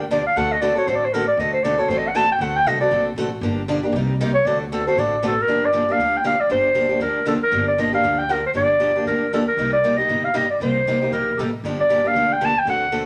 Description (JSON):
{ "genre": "acoustic string swing (jazz manouche)", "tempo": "234 BPM", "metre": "4/4", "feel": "swing 56% on 8ths", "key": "G minor", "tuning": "A4 = 442 Hz", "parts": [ { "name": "breathy clarinet", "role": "melody", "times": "0.0-13.1 s", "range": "F#4 to A5", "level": "-21 LUFS", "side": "equal", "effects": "none" }, { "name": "picked old ladder-braced acoustic guitar", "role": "accompaniment", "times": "0.0-13.0 s", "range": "C3 to A4", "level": "-26 LUFS", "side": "equal", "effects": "none" }, { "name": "upright bass", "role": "bass", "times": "0.0-13.1 s", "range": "G1 to D2", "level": "-32 LUFS", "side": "equal", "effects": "none" } ], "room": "wet studio reverb, RT60 0.8 s", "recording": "none", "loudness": "-20 LUFS", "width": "mono", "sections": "0.0-5.5 A section; 5.5-13.1 B section", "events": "clarinet solo 0.0-5.5", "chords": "0.4 D7; 3.4 Gm7; 3.9 Cm7; 4.4 D7; 5.5 Gm7; 9.6 Cm7; 11.6 Gm7" }